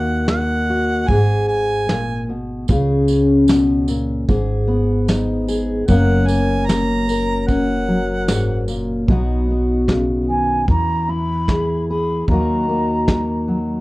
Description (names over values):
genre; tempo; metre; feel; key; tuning
acoustic folk duo or small band; 75 BPM; 4/4; straight; B major; A4 = 440 Hz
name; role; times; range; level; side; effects
clear harmonica; second line; 0.0-8.6 s; F#5 to A#5; -24 LUFS; right 2 dB; none
fingerpicked steel-string acoustic guitar; accompaniment; 0.0-13.8 s; F#2 to A#4; -18 LUFS; left 1 dB; none
upright bass; bass; 0.0-13.8 s; F#1 to E2; -22 LUFS; equal; none
soft brush drum kit; drums; 0.3-13.3 s; kick drum, snare drum; -19 LUFS; equal; none
tambourine; percussion; 2.7-8.9 s; none; -35 LUFS; right 6 dB; none
baroque flute; melody; 10.3-13.8 s; G#5 to B5; -22 LUFS; right 1 dB; none
room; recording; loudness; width
moderate small room reverb, RT60 0.6 s; worn, warbling old tape, cassette tape, warbly pitch drift; -16 LUFS; side -20 dB against mid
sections
0.0-9.1 A section; 9.1-13.8 B section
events
harmonica solo 0.0-9.1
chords
0.0 D#m; 1.1 G#m; 2.7 C#5; 4.3 G#m; 5.9 F#; 9.1 B; 10.7 E; 12.3 D#m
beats
0.28 1.08 1.88 | 2.68 3.48 4.28 5.08 | 5.88 6.68 7.48 8.28 | 9.08 9.88 10.68 11.48 | 12.28 13.08